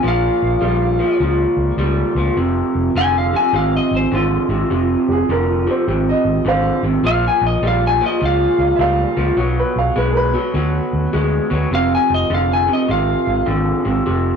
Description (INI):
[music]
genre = electric blues shuffle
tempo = 103 BPM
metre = 4/4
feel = swing 65% on 8ths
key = F minor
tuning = A4 = 440 Hz
[part]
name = electric slide guitar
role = melody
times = 0.0-13.5 s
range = F4 to Ab5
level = -20 LUFS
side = left 2 dB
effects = analog delay
[part]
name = electric guitar through a small old amp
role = riff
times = 0.0-14.4 s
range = F2 to G#3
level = -18 LUFS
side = equal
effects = spring reverb
[part]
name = vintage muted fingered electric bass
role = bass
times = 0.0-14.3 s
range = F1 to D2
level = -20 LUFS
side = equal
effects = none
[part]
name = warm upright piano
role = second line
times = 5.1-11.3 s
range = G4 to F5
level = -20 LUFS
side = right 2 dB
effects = none
[sound]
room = moderate studio reverb, RT60 0.6 s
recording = rough rehearsal-room recording, warm saturation, nothing above 10.5 kHz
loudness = -14 LUFS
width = side -6 dB against mid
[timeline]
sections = 0.0-14.4 A section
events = none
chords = 0.0 Bbm; 2.4 Fm; 7.0 Bbm; 9.4 Bm6; 11.7 Fm